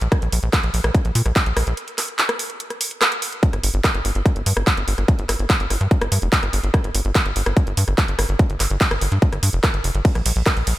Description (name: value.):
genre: psychedelic trance.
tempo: 145 BPM.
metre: 4/4.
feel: straight.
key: unclear.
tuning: A4 = 438 Hz.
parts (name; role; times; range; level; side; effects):
tight sequencer bass; bass; 0.0-10.7 s; F1 to Bb2; -20 LUFS; equal; none.
techno drum kit; drums; 0.0-10.8 s; handclaps, hi-hat, ride cymbal, rim click; -22 LUFS; right 1 dB; overdrive, small room reverb.
electronic kick drum; drums; 0.1-10.5 s; none; -18 LUFS; equal; distortion, overdrive, small room reverb.
room: light reverb, digital ambience.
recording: none.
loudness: -17 LUFS.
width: side -16 dB against mid.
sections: 0.0-10.8 A section.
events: break 1.8-3.4.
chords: none.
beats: | 0.12 0.53 0.95 1.36 | 1.77 2.19 2.60 3.01 | 3.43 3.84 4.26 4.67 | 5.08 5.50 5.91 6.33 | 6.74 7.15 7.57 7.98 | 8.39 8.81 9.22 9.63 | 10.05 10.46.